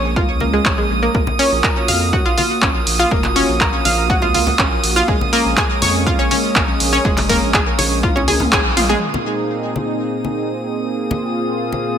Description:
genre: progressive house.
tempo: 122 BPM.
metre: 4/4.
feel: straight.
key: Bb minor.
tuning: A4 = 439 Hz.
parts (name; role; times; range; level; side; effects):
warm analog pad; sustained chords; 0.0-12.0 s; Bb2 to Ab4; -23 LUFS; right 1 dB; chorus, sidechain pumping.
analog pluck; arpeggios; 0.0-9.0 s; Ab3 to F5; -18 LUFS; equal; chorus, sidechain pumping, digital delay.
saturated sub bass; bass; 0.0-9.0 s; F1 to F2; -23 LUFS; equal; sidechain pumping.
drifting glass-harmonics texture; texture; 0.0-12.0 s; Eb6; -25 LUFS; right 4 dB; chorus, built-in reverb, sidechain pumping.
electronic kick drum; drums; 0.2-8.6 s; none; -20 LUFS; equal; overdrive, small room ambience.
congas; percussion; 0.4-11.8 s; none; -28 LUFS; left 4 dB; sidechain pumping on perc.
deep house drum kit; drums; 0.7-9.1 s; crash cymbal, handclaps, hi-hat, toms; -20 LUFS; equal; overdrive, low-pass filter on snare, small room ambience, sidechain pumping on hats, low-pass filter on hats, sidechain pumping on toms, low-pass filter on toms, sidechain pumping on cymbals, low-pass filter on cymbals.
room: light reverb, digital ambience.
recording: none.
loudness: -14 LUFS.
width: side -8 dB against mid.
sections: 0.0-9.0 A section; 9.0-12.0 B section.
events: filter sweep on analog synth pad 0.0-9.0; drum fill 8.0-9.0; band accent 8.5.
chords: 0.0 Bbm7; 1.1 Gbmaj7/Bb; 5.1 Bbm7; 9.0 Fm7/Bb.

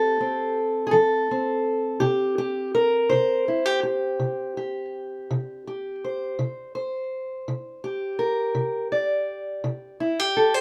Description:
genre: acoustic country blues, solo or duo.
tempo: 55 BPM (dotted quarters).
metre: 12/8.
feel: straight.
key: unclear.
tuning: A4 = 439 Hz.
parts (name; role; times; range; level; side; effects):
fingerpicked steel-string acoustic guitar; solo; 0.0-10.6 s; C3 to D5; -25 LUFS; equal; none.
room: light reverb.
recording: close, detailed microphones.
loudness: -25 LUFS.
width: mono.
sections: 0.0-10.6 A section.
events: none.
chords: 0.0 F; 2.0 C5.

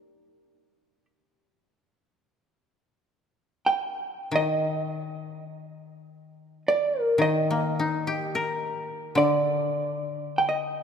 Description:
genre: japanese traditional, Japanese chamber music.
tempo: free time.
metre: none.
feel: none.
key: unclear.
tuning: A4 = 440 Hz.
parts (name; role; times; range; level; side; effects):
vintage hollow-body jazz guitar; melody; 0.0-10.8 s; G4 to G5; -25 LUFS; right 2 dB; none.
koto; accompaniment; 4.3-10.8 s; D3 to Bb4; -28 LUFS; left 4 dB; none.
room: wet church reverb, RT60 3.1 s.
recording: minimal, uncompressed stereo recording.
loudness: -24 LUFS.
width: side -7 dB against mid.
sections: 0.0-2.8 A section; 2.8-10.8 A section.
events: none.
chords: none.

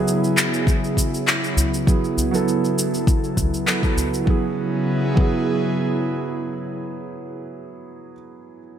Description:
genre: organic downtempo.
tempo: 100 BPM.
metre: 4/4.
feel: swing 54% on 16ths.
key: F# minor.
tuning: A4 = 440 Hz.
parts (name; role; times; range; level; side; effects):
felt-muted upright piano; accompaniment; 0.0-8.8 s; F#3 to A4; -24 LUFS; right 4 dB; sidechain pumping, low-pass filter, digital delay.
airy breathy pad; sustained chords; 0.0-7.4 s; C#3 to A4; -24 LUFS; equal; chorus, vintage 12-bit sampler grit, sidechain pumping.
electronic shaker and handclaps; drums; 0.1-4.2 s; none; -23 LUFS; left 1 dB; gated reverb.
electronic kick drum; drums; 0.7-5.4 s; none; -19 LUFS; left 1 dB; none.
udu; percussion; 1.6-4.1 s; none; -25 LUFS; equal; none.
room: moderate plate reverb, RT60 3.5 s.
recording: bright 1980s-style digital production.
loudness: -18 LUFS.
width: side -9 dB against mid.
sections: 0.0-4.3 A section; 4.3-6.7 B section.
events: filter sweep on felt piano 0.0-4.3; filter sweep on analog synth pad 0.0-4.3.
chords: 0.0 E69/C#; 1.9 Esus4; 4.3 F#5.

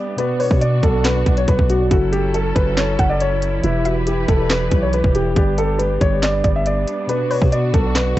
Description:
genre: hip hop, trap.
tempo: 139 BPM.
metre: 4/4.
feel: half-time.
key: unclear.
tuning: A4 = 442 Hz.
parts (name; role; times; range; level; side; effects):
dark baby grand piano; melody; 0.0-8.2 s; E4 to E5; -21 LUFS; left 1 dB; analog delay.
soft round pluck; second line; 0.0-7.5 s; B4 to F#5; -27 LUFS; equal; chorus, analog delay.
mellow tine electric piano; accompaniment; 0.0-8.2 s; B2 to D5; -24 LUFS; equal; medium stereo tremolo.
muted studio string section; sustained chords; 0.0-8.2 s; E3 to B4; -28 LUFS; equal; none.
trap drum kit; drums; 0.2-8.2 s; handclaps, hi-hat, kick drum, snare drum; -19 LUFS; equal; overdrive.
growling 808-style bass; bass; 0.5-8.2 s; E1 to B2; -20 LUFS; equal; none.
room: digital ambience.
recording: dry, gritty hardware recording, cassette tape, nothing above 8.0 kHz.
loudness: -15 LUFS.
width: side -15 dB against mid.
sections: 0.0-8.2 A section.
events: none.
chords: 0.2 Bm; 1.9 F#m7; 3.6 Em; 5.4 G; 7.1 Bm.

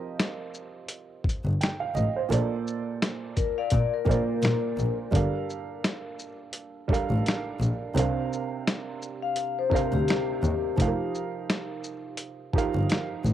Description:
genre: lo-fi hip hop.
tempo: 85 BPM.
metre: 4/4.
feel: swing 59% on 16ths.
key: unclear.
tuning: A4 = 440 Hz.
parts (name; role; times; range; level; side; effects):
warm upright piano; accompaniment; 0.0-13.3 s; Bb2 to G5; -31 LUFS; right 6 dB; cassette tape, low-pass filter.
dusty soul sampler-style drum kit; drums; 0.2-13.3 s; finger snaps, hi-hat, kick drum, shaker, snare drum; -27 LUFS; left 1 dB; none.
warm double bass; bass; 1.5-13.3 s; F1 to Bb2; -26 LUFS; left 1 dB; transformer saturation.
vibraphone with medium hard mallets; second line; 3.4-5.0, 9.2-10.7 s; G4 to F5; -30 LUFS; left 10 dB; low-pass filter, cassette tape, tape echo.
room: light reverb.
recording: home recording on cassette.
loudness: -25 LUFS.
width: side -11 dB against mid.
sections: 0.0-13.3 A section.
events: none.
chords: 0.0 F7sus4; 2.3 Bbmaj7; 5.1 Gm9; 8.0 C7sus4; 10.8 F7sus4.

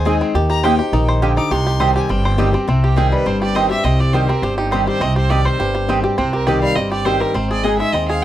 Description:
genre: bluegrass.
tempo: 206 BPM.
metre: 4/4.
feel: straight.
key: C minor.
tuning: A4 = 441 Hz.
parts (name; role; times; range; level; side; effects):
clear fiddle; second line; 0.0-2.5 s; G5 to D6; -27 LUFS; left 6 dB; none.
picked acoustic archtop guitar; accompaniment; 0.0-8.2 s; G2 to Ab4; -21 LUFS; left 4 dB; none.
bluegrass banjo; arpeggios; 0.0-8.2 s; G3 to C5; -21 LUFS; right 2 dB; none.
upright bass; bass; 0.0-8.2 s; G1 to Eb2; -19 LUFS; equal; none.
mandolin; stabs; 0.1-7.7 s; Bb3 to Ab5; -21 LUFS; right 8 dB; none.
clear fiddle; melody; 2.8-8.2 s; Eb4 to F5; -23 LUFS; right 2 dB; none.
room: light reverb.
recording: dry, close 1970s-style studio recording.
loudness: -14 LUFS.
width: side -12 dB against mid.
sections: 0.0-2.7 A section; 2.7-8.2 B section.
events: fiddle solo 0.0-2.7.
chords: 0.3 Eb; 1.5 Cm; 7.4 Ab.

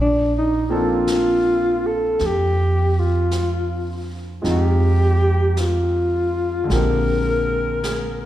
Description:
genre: jazz ballad.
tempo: 53 BPM.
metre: 4/4.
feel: swing 66% on 8ths.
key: Bb major.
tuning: A4 = 439 Hz.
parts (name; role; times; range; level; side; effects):
dark alto saxophone; melody; 0.0-8.3 s; D4 to Bb4; -20 LUFS; equal; none.
upright bass; bass; 0.0-8.3 s; Bb1 to F2; -21 LUFS; right 1 dB; none.
clear concert grand piano; accompaniment; 0.7-8.3 s; D3 to A4; -25 LUFS; left 1 dB; none.
jazz brush drum kit; drums; 1.1-8.3 s; brushed snare drum, hi-hat, snare drum; -34 LUFS; left 1 dB; none.
room: wet concert hall reverb, RT60 1.9 s.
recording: recorded in a church or concert hall.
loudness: -17 LUFS.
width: side -13 dB against mid.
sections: 0.0-8.3 A section.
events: none.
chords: 0.0 Bbmaj9; 4.4 Fm7; 6.7 Bb13.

